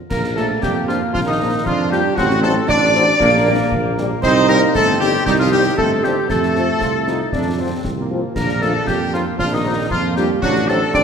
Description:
military-style march for wind band; 116 BPM; 2/4; straight; Bb major; A4 = 439 Hz
mellow tuba; bass; 0.0-11.0 s; G1 to F2; -21 LUFS; right 2 dB
mellow trumpet section; melody; 0.1-11.0 s; Eb4 to D5; -23 LUFS; left 1 dB
mellow piccolo; second line; 0.1-11.0 s; Eb6 to D7; -24 LUFS; left 4 dB
warm euphonium; second line; 0.1-11.0 s; Eb3 to D4; -22 LUFS; right 3 dB
warm woodwind section; second line; 0.1-11.0 s; Eb4 to D5; -23 LUFS; left 1 dB
clear trombone section; sustained chords; 0.1-11.0 s; A3 to F4; -23 LUFS; right 1 dB
concert snare drum, clash cymbals and concert bass drum; drums; 0.1-11.0 s; -27 LUFS; left 2 dB
dark French horn section; accompaniment; 0.4-10.8 s; F3 to F4; -26 LUFS; left 5 dB
wet scoring stage reverb, RT60 1.8 s; -14 LUFS; side -6 dB against mid
0.1-11.0 A section
0.1 Bb; 2.2 D7/A; 3.2 Gm/Bb; 4.2 Cm; 6.3 F; 8.4 Bb; 10.4 D7/A
| 0.11 0.63 | 1.14 1.66 | 2.17 2.69 | 3.21 3.72 | 4.24 4.75 | 5.27 5.78 | 6.30 6.81 | 7.33 7.84 | 8.36 8.88 | 9.39 9.91 | 10.42 10.94

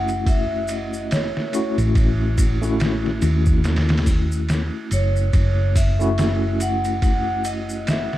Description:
trip hop; 71 BPM; 4/4; swing 59% on 16ths; F# dorian; A4 = 440 Hz
vibraphone with medium hard mallets; melody; 0.0-8.2 s; C#5 to F#5; -27 LUFS; right 1 dB; tape echo
tine electric piano; accompaniment; 0.0-8.2 s; A3 to F#4; -25 LUFS; left 1 dB; fast stereo tremolo, tape echo
hollow-body short-scale fingered electric bass; bass; 0.0-8.1 s; F#1 to D#2; -22 LUFS; equal
trip hop sampler-style drum kit; drums; 0.1-8.2 s; hi-hat, kick drum, ride cymbal, snare drum; -22 LUFS; equal; overdrive
maracas; percussion; 0.1-8.1 s; -37 LUFS; left 1 dB
light reverb; dark, warm production; -18 LUFS; side -14 dB against mid
0.0-8.2 A section
0.0 F#m7
0.27 1.11 | 1.96 2.80 3.65 4.49 | 5.33 6.18 7.03 7.87

